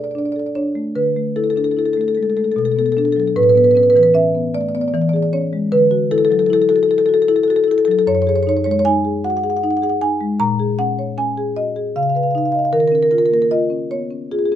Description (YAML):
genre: classical, contemporary piece for solo marimba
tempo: 76 BPM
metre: 3/4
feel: rubato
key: unclear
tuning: A4 = 438 Hz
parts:
  - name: marimba with medium mallets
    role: solo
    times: 0.0-14.6 s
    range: F#2 to A#5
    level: -14 LUFS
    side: left 1 dB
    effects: none
room: light reverb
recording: minimal, uncompressed stereo recording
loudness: -14 LUFS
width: side -10 dB against mid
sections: 0.0-14.6 A section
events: none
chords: 0.0 Bm7; 1.0 Dsus2; 2.6 Bm7; 3.4 Aadd9; 4.9 E6; 5.7 Dadd9; 8.1 F#sus2; 10.4 A#m7; 12.0 C#9; 12.7 D#sus2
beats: 0.15 | 0.96 1.76 2.56 | 3.36 4.15 4.94 | 5.72 6.50 7.29 | 8.07 8.85 9.62 | 10.40 11.18 11.96 | 12.72 13.51 14.31